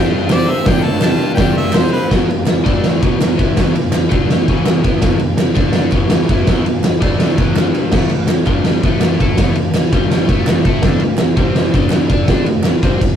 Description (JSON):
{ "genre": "garage rock duo or trio", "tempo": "165 BPM", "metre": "4/4", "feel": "straight", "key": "E minor", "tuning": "A4 = 438 Hz", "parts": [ { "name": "bright harmonica", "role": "melody", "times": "0.0-2.1 s", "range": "B4 to A5", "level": "-22 LUFS", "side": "equal", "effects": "overdrive" }, { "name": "overdriven electric guitar", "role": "riff", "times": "0.0-13.0 s", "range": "E2 to D5", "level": "-20 LUFS", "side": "equal", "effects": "none" }, { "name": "oversized low-tuned drum kit", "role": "drums", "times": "0.3-13.1 s", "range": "crash cymbal, hi-hat, kick drum, ride cymbal, snare drum", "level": "-13 LUFS", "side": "equal", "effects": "none" }, { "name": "group handclap", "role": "percussion", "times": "0.3-12.7 s", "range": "none", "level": "-31 LUFS", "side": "right 2 dB", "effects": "none" } ], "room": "light reverb", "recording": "rough rehearsal-room recording, warm saturation", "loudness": "-12 LUFS", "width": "side -9 dB against mid", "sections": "0.0-2.1 A section; 2.1-13.2 B section", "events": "harmonica solo 0.0-2.1", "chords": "0.3 C5; 0.7 D5; 1.0 G5; 1.7 C5; 2.1 E5; 2.7 D5; 3.0 E5; 4.1 D5; 4.5 E5; 5.6 D5; 5.9 E5; 7.0 D5; 7.4 E5; 7.6 G5; 7.9 A5; 8.5 G5; 8.8 A5; 9.9 G5; 10.3 A5; 10.8 D5; 11.4 C5; 11.7 D5", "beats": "0.30 | 0.66 1.02 1.39 1.75 | 2.11 2.47 2.84 3.20 | 3.56 3.93 4.29 4.66 | 5.02 5.38 5.75 6.11 | 6.47 6.83 7.20 7.56 | 7.92 8.29 8.65 9.02 | 9.38 9.74 10.11 10.47 | 10.83 11.20 11.56 11.92 | 12.28 12.65 13.01" }